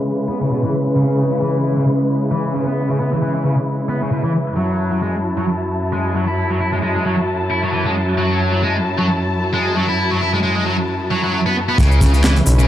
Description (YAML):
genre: breakbeat, breaks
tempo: 133 BPM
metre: 4/4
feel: swing 56% on 16ths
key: C# minor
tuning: A4 = 439 Hz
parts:
  - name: muted studio string section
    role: sustained chords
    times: 0.0-12.7 s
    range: F#2 to A5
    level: -18 LUFS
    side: equal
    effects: sidechain pumping
  - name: downlifter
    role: sound effects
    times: 0.0-1.0 s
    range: none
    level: barely audible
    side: none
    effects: none
  - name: high-gain distorted guitar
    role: riff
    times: 0.3-12.7 s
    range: B2 to E4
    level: -20 LUFS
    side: equal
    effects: distortion, low-pass filter, tape echo
  - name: fat analog bass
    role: bass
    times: 11.8-12.7 s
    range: B1 to C#2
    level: -13 LUFS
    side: equal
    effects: none
  - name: crunchy breakbeat drum kit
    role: drums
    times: 11.8-12.6 s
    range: hi-hat, kick drum, snare drum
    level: -17 LUFS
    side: equal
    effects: none
  - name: electronic shaker and handclaps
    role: drums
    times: 11.8-12.7 s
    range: none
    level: -26 LUFS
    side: left 1 dB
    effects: none
room: moderate lush hall reverb, RT60 1.9 s, studio ambience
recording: vinyl crackle, low-pass filter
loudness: -15 LUFS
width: side -12 dB against mid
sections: 0.0-11.8 A section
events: filter sweep on distorted electric guitar 0.0-11.8; filter sweep 0.0-11.8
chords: 0.0 C#m7; 4.6 F#m7; 11.8 C#m7